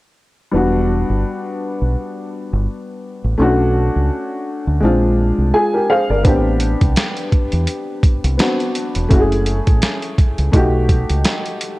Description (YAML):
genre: hip hop, jazz-hop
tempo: 84 BPM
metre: 4/4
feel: swing 57% on 16ths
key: unclear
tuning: A4 = 440 Hz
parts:
  - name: dark upright piano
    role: accompaniment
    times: 0.5-11.8 s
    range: G3 to G#5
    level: -18 LUFS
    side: left 1 dB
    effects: none
  - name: deep dub fingered electric bass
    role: bass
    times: 0.5-11.2 s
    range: E1 to E2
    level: -17 LUFS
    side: equal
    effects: none
  - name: boom bap sampler-style drum kit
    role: drums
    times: 6.2-11.8 s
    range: hi-hat, kick drum, snare drum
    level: -16 LUFS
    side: equal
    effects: none
room: light reverb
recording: worn, warbling old tape, cassette tape, warbly pitch drift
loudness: -14 LUFS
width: side -19 dB against mid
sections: 0.5-11.8 A section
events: upright piano fill 5.2-6.2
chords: 0.5 Em7; 3.4 Bm7; 4.8 A#9; 6.2 Am11; 9.1 F#m7; 10.5 B7b13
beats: | 0.54 1.25 1.96 2.68 | 3.39 4.11 4.82 5.54 | 6.25 6.96 7.68 8.39 | 9.11 9.82 10.54 11.25